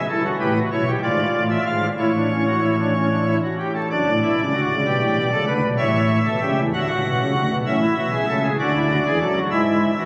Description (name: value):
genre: classical, baroque-style 3-part fugue for pipe organ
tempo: 64 BPM (dotted quarters)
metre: 6/8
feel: straight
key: D major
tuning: A4 = 441 Hz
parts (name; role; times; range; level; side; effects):
- pipe organ, cornet; solo; 0.0-10.1 s; F#1 to F#5; -20 LUFS; equal; none
room: wet cathedral reverb, RT60 5.7 s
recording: recorded on a phone in the room, club reverb, vinyl crackle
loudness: -20 LUFS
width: mono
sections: 0.0-3.9 A section; 3.9-10.1 B section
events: none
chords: 0.1 Em/G; 1.0 E7b9/G#; 2.0 A; 3.9 D/F#; 4.9 G; 6.7 D; 7.7 A; 8.6 D; 9.5 E/G#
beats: | 0.08 1.02 | 1.98 2.94 | 3.91 4.86 | 5.79 6.73 | 7.66 8.59 | 9.52